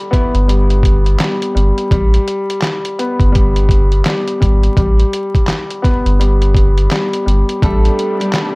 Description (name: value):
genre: hip hop, boom-bap hip-hop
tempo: 84 BPM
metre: 4/4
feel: swing 60% on 16ths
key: A minor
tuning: A4 = 440 Hz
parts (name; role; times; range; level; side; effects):
- dark upright piano; accompaniment; 0.0-8.6 s; G3 to B3; -18 LUFS; left 1 dB; cassette tape, high-pass filter, low-pass filter
- nylon-string guitar; melody; 0.1-0.3, 7.6-8.3 s; E3 to A4; -23 LUFS; right 2 dB; high-pass filter, low-pass filter, tape echo
- trip hop sampler-style drum kit; drums; 0.1-8.5 s; handclaps, hi-hat, kick drum, snare drum; -15 LUFS; equal; none
- round analog bass; bass; 0.3-7.9 s; G1 to A1; -12 LUFS; equal; tube saturation
- muted studio string section; sustained chords; 7.6-8.6 s; C3 to D4; -23 LUFS; equal; high-pass filter, low-pass filter
room: small room ambience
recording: dry, gritty hardware recording, vinyl crackle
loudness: -11 LUFS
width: side -28 dB against mid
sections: 0.0-8.6 A section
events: none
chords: 0.0 N.C.; 7.6 Am11